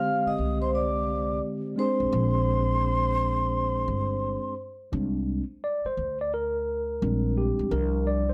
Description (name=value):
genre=hip hop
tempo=86 BPM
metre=4/4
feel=swing 65% on 16ths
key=unclear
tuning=A4 = 440 Hz
part: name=vibraphone with soft mallets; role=melody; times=0.0-4.5 s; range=C5 to F5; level=-32 LUFS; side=equal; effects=plate reverb, tape echo
part: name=breathy mellow jazz flute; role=second line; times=0.0-4.5 s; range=C6 to F6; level=-33 LUFS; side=equal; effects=plate reverb
part: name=mellow tine electric piano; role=accompaniment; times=0.0-8.3 s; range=D3 to D5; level=-31 LUFS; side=equal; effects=plate reverb
part: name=upright bass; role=bass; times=0.3-8.3 s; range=G1 to D2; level=-31 LUFS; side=equal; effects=none
room=moderate studio reverb, RT60 0.6 s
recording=none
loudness=-27 LUFS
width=mono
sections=0.0-4.9 A section; 4.9-8.3 B section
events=tine electric piano solo 4.9-8.3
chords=0.0 Bb13; 4.9 Bb13/C; 7.0 Bb13; 7.7 C9sus4